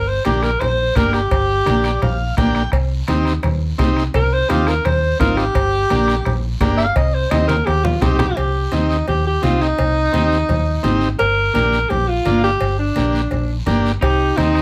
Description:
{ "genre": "latin, cumbia", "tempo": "170 BPM", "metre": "4/4", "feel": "straight", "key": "C minor", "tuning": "A4 = 440 Hz", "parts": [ { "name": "clear alto saxophone", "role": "melody", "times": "0.0-14.6 s", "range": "D4 to F5", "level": "-21 LUFS", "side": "equal", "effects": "none" }, { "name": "hollow-body short-scale fingered electric bass", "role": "bass", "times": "0.0-14.6 s", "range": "G1 to Eb2", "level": "-22 LUFS", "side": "equal", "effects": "none" }, { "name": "bombo", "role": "percussion", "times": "0.2-8.4, 14.0-14.6 s", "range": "none", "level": "-25 LUFS", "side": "equal", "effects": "none" }, { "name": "combo organ", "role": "accompaniment", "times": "0.3-14.6 s", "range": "Bb3 to G5", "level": "-23 LUFS", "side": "equal", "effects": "none" }, { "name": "congas", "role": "percussion", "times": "0.3-14.6 s", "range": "none", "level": "-27 LUFS", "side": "equal", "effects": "none" }, { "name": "cowbell and timbales", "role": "percussion", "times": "0.3-14.6 s", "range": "none", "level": "-31 LUFS", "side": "equal", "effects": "none" }, { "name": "guiro", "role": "percussion", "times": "0.3-14.6 s", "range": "none", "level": "-38 LUFS", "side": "equal", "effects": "none" }, { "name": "electric guitar at the edge of break-up", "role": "second line", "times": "14.0-14.6 s", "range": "C4 to Eb4", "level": "-26 LUFS", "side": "equal", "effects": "none" } ], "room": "light reverb", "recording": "none", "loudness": "-17 LUFS", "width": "mono", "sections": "0.0-8.4 A section; 8.4-14.6 B section", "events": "alto saxophone solo 0.0-8.4; transistor combo organ fill 1.7-2.7; drum fill 7.3-8.4", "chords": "0.0 Gm; 2.7 Cm; 5.6 Gm; 7.0 Cm; 11.2 Gm; 14.0 Cm" }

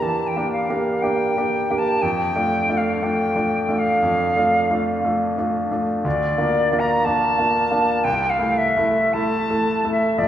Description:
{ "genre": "classical, romantic duo for flute and grand piano", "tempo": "60 BPM", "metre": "4/4", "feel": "rubato", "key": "D minor", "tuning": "A4 = 442 Hz", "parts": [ { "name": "silver concert flute", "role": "melody", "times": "0.0-10.3 s", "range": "D5 to Bb5", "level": "-20 LUFS", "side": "left 1 dB", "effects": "none" }, { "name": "bright grand piano", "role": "accompaniment", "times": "0.0-10.3 s", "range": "Bb1 to A4", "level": "-21 LUFS", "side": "right 1 dB", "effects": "none" } ], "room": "wet concert hall reverb, RT60 2.1 s", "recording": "heard from further back in the room", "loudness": "-18 LUFS", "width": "side -11 dB against mid", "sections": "0.0-10.3 A section", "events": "none", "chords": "0.0 Em7b5; 2.0 Dm/F; 6.0 Bb/D; 8.0 Am/C" }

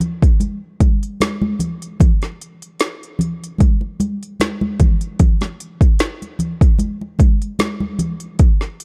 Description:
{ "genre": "soul", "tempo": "75 BPM", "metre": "4/4", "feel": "swing 54% on 16ths", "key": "none", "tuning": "none", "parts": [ { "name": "deep house drum kit", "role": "drums", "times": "0.0-8.8 s", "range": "hi-hat, kick drum, snare drum", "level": "-16 LUFS", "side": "equal", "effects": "none" }, { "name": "congas", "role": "percussion", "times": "0.0-8.2 s", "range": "none", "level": "-24 LUFS", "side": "equal", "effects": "none" } ], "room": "little or no reverb", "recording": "dark, warm production", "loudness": "-18 LUFS", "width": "mono", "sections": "0.0-8.8 A section", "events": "none", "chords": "none" }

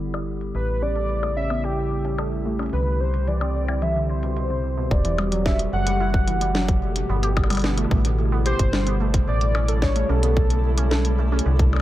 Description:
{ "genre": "IDM", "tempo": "110 BPM", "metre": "4/4", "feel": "straight", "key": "unclear", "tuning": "A4 = 441 Hz", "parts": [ { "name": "warbly tape-like pad", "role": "sustained chords", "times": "0.0-11.8 s", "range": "B2 to G4", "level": "-30 LUFS", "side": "equal", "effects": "chorus, built-in reverb" }, { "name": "metallic FM bass", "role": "bass", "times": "0.0-11.8 s", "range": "E1 to C2", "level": "-23 LUFS", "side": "equal", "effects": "tube saturation" }, { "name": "glitchy drum kit", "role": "drums", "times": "0.1-11.8 s", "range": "hi-hat, percussion blips, snare drum", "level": "-30 LUFS", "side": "left 2 dB", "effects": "low-pass filter on hats, low-pass filter on perc, low-pass filter on snare, low-pass filter on room, analog delay" }, { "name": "warm velvety synth lead", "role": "melody", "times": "0.5-11.2 s", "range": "G4 to F#5", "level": "-28 LUFS", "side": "equal", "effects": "chorus, analog delay" }, { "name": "warbly dusty pluck", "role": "arpeggios", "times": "0.8-11.6 s", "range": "B2 to A4", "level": "-29 LUFS", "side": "right 1 dB", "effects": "chorus, cassette tape, analog delay" }, { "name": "electronic kick drum", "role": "drums", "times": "4.9-11.7 s", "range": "none", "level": "-22 LUFS", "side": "equal", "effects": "none" }, { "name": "flickering grainy texture", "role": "texture", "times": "5.6-11.8 s", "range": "A3 to A4", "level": "-35 LUFS", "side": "equal", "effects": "built-in reverb" } ], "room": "light reverb", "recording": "echo-heavy mix", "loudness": "-20 LUFS", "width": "side -14 dB against mid", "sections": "0.0-4.9 A section; 4.9-11.8 B section", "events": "none", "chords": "0.0 G6; 0.5 A7; 2.7 Cadd9; 4.9 Emadd9; 7.1 G6; 9.3 A7" }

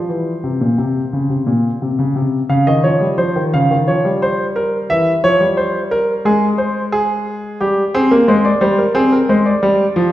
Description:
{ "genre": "classical, baroque-style two-part invention for grand piano", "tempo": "88 BPM", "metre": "4/4", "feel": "straight", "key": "F minor", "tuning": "A4 = 440 Hz", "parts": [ { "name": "warm grand piano", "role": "solo", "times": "0.0-10.1 s", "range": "Bb2 to F5", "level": "-13 LUFS", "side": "equal", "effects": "none" } ], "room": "wet recital hall reverb, RT60 1.8 s", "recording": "heard from further back in the room", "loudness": "-13 LUFS", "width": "side -14 dB against mid", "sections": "0.0-2.2 A section; 2.2-10.1 B section", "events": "none", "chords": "0.0 N.C.; 2.2 F5/C; 3.5 Gm7b5/Db; 4.9 C7/E; 6.3 Ab; 7.6 C5/G; 9.0 Dm7b5" }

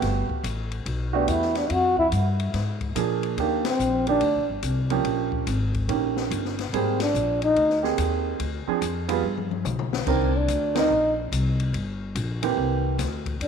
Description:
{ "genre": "jazz, small-group swing and bop", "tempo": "144 BPM", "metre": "4/4", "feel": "swing 65% on 8ths", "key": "Eb major from 3.4 s", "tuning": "A4 = 437 Hz", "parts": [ { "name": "warm baby grand piano", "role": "accompaniment", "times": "0.0-13.0 s", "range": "Eb3 to Bb4", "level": "-27 LUFS", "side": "right 11 dB", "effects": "none" }, { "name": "upright bass", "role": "bass", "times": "0.0-13.5 s", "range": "G1 to Bb2", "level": "-27 LUFS", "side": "left 1 dB", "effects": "none" }, { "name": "open jazz drum kit", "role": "drums", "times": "0.0-13.5 s", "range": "crash cymbal, hi-hat, kick drum, ride cymbal, snare drum, toms", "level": "-33 LUFS", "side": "left 8 dB", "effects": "none" }, { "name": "trombone with bucket mute", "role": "melody", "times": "1.2-13.5 s", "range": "Bb3 to F#4", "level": "-24 LUFS", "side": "left 1 dB", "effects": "none" } ], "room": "moderate echo chamber reverb, RT60 2.0 s, small room reverb", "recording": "1960s-style stereo with parts hard left and right", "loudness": "-22 LUFS", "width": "side -6 dB against mid", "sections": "0.0-3.4 A section; 3.4-13.5 B section", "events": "band accent 3.6, 6.9, 10.7; drum fill 9.2-10.1", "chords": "0.0 Gmaj9; 1.7 Bb7; 3.4 Ebmaj7; 5.1 Bbm7; 5.9 Eb7; 6.7 Abmaj9; 8.4 Dm7b5; 9.2 G; 10.1 Cm9; 11.7 Gmadd11; 12.6 C7" }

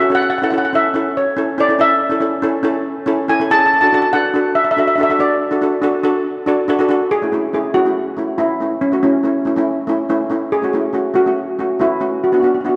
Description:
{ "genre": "calypso", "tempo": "141 BPM", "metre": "4/4", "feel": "straight", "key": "unclear", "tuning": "A4 = 440 Hz", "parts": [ { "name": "steel pan", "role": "melody", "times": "0.0-12.8 s", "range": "C#4 to A5", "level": "-18 LUFS", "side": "equal", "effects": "none" }, { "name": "steel pan", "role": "accompaniment", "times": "0.0-12.8 s", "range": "A3 to F#5", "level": "-20 LUFS", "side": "equal", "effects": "none" } ], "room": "wet concert hall reverb, RT60 2.4 s", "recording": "dark, warm production", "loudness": "-16 LUFS", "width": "mono", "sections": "0.0-7.1 A section; 7.1-12.8 B section", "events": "steel pan fill 6.3-7.1", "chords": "0.3 A; 3.7 D; 7.1 F#m7; 12.2 Bm" }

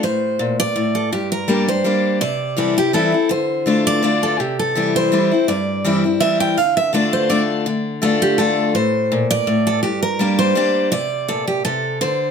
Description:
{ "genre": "bluegrass", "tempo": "165 BPM", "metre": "3/4", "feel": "swing 54% on 8ths", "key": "D minor", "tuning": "A4 = 440 Hz", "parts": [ { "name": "picked steel-string acoustic guitar", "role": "melody", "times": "0.0-12.3 s", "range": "G4 to G5", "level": "-19 LUFS", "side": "right 2 dB", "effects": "plate reverb" }, { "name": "picked steel-string acoustic guitar", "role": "accompaniment", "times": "0.0-12.3 s", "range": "G2 to G4", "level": "-18 LUFS", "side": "left 3 dB", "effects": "none" } ], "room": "moderate studio reverb, RT60 0.6 s", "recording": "none", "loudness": "-16 LUFS", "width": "side -6 dB against mid", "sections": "0.0-7.7 A section; 7.7-12.3 A section", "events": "none", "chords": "0.0 D5; 1.1 Gm; 2.2 C; 3.3 Dm; 4.4 C; 6.6 Dm; 9.8 Gm; 10.9 Bbmaj9" }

